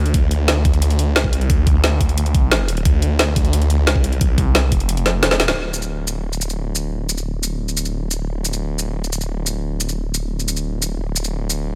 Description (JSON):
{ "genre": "dark technical drum and bass", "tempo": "177 BPM", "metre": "4/4", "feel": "straight", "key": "D minor", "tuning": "A4 = 442 Hz", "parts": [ { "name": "snarling distorted saw bass", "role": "bass", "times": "0.0-11.8 s", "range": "D1 to D2", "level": "-22 LUFS", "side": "equal", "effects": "distortion, overdrive, sidechain pumping" }, { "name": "drum and bass drum kit", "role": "drums", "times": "0.1-11.6 s", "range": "hi-hat, shaker, snare drum", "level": "-22 LUFS", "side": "equal", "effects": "overdrive, studio reverb" }, { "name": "electronic kick drum", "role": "drums", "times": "0.1-4.8 s", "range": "none", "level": "-20 LUFS", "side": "equal", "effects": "overdrive, studio reverb" } ], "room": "little or no reverb", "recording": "none", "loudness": "-19 LUFS", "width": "mono", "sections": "0.0-5.6 A section; 5.6-11.8 B section", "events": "kick drops out 4.9-5.6; drum fill 5.1-5.6; band accent 5.5", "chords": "none", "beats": "| 0.14 0.48 0.82 1.16 | 1.50 1.84 2.18 2.52 | 2.85 3.19 3.53 3.87 | 4.21 4.55 4.89 5.23 | 5.57 5.91 6.24 6.58 | 6.92 7.26 7.60 7.94 | 8.28 8.62 8.96 9.29 | 9.63 9.97 10.31 10.65 | 10.99 11.33 11.67" }